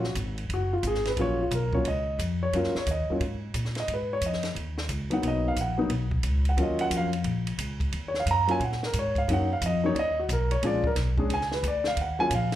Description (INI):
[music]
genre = jazz piano trio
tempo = 178 BPM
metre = 4/4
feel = swing 64% on 8ths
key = Eb minor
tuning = A4 = 440 Hz
[part]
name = dark baby grand piano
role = melody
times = 0.0-12.5 s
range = Gb3 to Bb5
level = -27 LUFS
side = equal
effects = plate reverb
[part]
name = upright bass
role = bass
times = 0.0-12.6 s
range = Gb1 to Bb2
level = -29 LUFS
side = equal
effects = none
[part]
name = compact cocktail drum kit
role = drums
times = 0.0-12.6 s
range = hi-hat, kick drum, ride cymbal, snare drum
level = -34 LUFS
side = right 1 dB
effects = none
[sound]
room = light reverb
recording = live gig heard through the venue's PA, club reverb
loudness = -25 LUFS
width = side -12 dB against mid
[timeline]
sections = 0.0-12.6 A section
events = grand piano solo 0.0-12.6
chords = 0.0 Ebm7 (rootless); 3.9 Abm7; 6.6 Ebm7; 9.3 Bmaj7; 10.6 Bb7#9; 12.0 Ebm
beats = 0.16 0.50 0.83 | 1.17 1.51 1.85 2.19 | 2.53 2.87 3.20 3.54 | 3.88 4.22 4.56 4.89 | 5.23 5.57 5.91 6.24 | 6.58 6.92 7.26 7.59 | 7.93 8.27 8.60 8.94 | 9.28 9.61 9.95 10.29 | 10.62 10.96 11.30 11.63 | 11.97 12.31